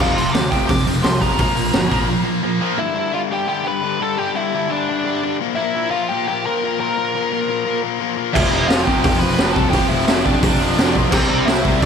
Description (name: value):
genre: punk rock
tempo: 172 BPM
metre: 4/4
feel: straight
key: unclear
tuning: A4 = 441 Hz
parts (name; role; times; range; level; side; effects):
- dark smooth lead guitar; melody; 0.0-11.9 s; C4 to D6; -22 LUFS; equal; overdrive, digital delay
- biting overdriven guitar; riff; 0.0-2.8, 8.3-11.9 s; F2 to C4; -23 LUFS; right 11 dB; slapback echo
- distorted electric guitar; riff; 0.0-11.9 s; F2 to C4; -22 LUFS; left 11 dB; distortion, slapback echo
- high-gain distorted guitar; riff; 0.0-2.8, 8.3-11.9 s; F2 to C4; -25 LUFS; equal; distortion
- fuzz picked electric bass; bass; 0.0-2.1, 8.4-11.9 s; F1 to D2; -24 LUFS; equal; overdrive
- raw garage drum kit; drums; 0.0-2.0, 8.4-11.9 s; crash cymbal, hi-hat, kick drum, snare drum; -18 LUFS; equal; none
room: moderate lush hall reverb, RT60 1.9 s, studio reverb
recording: big arena sound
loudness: -16 LUFS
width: side -6 dB against mid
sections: 0.0-2.8 A section; 2.8-11.9 B section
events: lead electric guitar solo 0.0-2.8; break 2.1-2.8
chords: 0.0 F5; 1.4 Bb5; 2.8 G; 5.4 Bb5; 8.3 F5; 11.1 C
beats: | 0.00 0.35 0.69 1.04 | 1.39 1.74 2.08 2.43 | 2.78 3.13 3.48 3.83 | 4.17 4.52 4.87 5.22 | 5.56 5.91 6.26 6.61 | 6.96 7.30 7.65 8.00 | 8.35 8.70 9.04 9.39 | 9.74 10.09 10.43 10.78 | 11.13 11.47 11.82